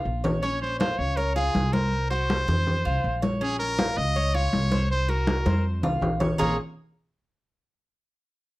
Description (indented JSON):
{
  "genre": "latin, Cuban son and guajira",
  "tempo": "161 BPM",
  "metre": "4/4",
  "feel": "straight",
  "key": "Bb minor",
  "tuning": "A4 = 440 Hz",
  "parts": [
    { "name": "Cuban tres", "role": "arpeggios", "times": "0.0-6.6 s", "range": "Bb3 to Db5", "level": "-30 LUFS", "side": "equal", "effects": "none" },
    { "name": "upright bass", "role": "bass", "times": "0.0-6.6 s", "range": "Bb1 to F2", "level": "-27 LUFS", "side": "equal", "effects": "none" },
    { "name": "congas", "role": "percussion", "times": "0.2-6.5 s", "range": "none", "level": "-27 LUFS", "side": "equal", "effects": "none" },
    { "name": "brilliant trumpet", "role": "melody", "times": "0.4-6.6 s", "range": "Ab4 to Eb5", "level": "-28 LUFS", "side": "equal", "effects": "none" }
  ],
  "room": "moderate studio reverb, RT60 0.6 s",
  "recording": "dark, warm production",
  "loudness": "-22 LUFS",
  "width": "side -18 dB against mid",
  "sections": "0.0-6.4 A section; 6.4-7.9 B section",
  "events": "drum fill 0.0-0.4, 5.5-6.4",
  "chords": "0.4 Bbm; 1.2 Db; 1.9 Gbmaj7#11/C; 2.7 F5; 3.4 Bbm; 4.2 Db; 4.9 Gbmaj7#11/C; 5.6 F5; 6.4 Bb5"
}